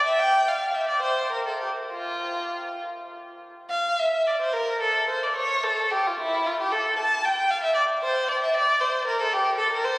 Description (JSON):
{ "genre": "classical, baroque-style suite movement for unaccompanied violin", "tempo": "64-78 BPM (dotted quarters)", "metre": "6/8", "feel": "rubato", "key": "F major", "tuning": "A4 = 437 Hz", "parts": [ { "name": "rich violin", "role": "solo", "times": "0.0-10.0 s", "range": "E4 to A5", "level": "-22 LUFS", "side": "equal", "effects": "none" } ], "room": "wet cathedral reverb, RT60 4.7 s", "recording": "recorded on a phone in the room, studio reverb, compression", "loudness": "-22 LUFS", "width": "side -21 dB against mid", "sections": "0.0-3.7 A section; 3.7-10.0 A section", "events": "none", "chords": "none", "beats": "| 0.20 1.03 | 1.90 2.80 | 3.71 4.55 | 5.37 6.18 | 6.97 7.76 | 8.54 9.34" }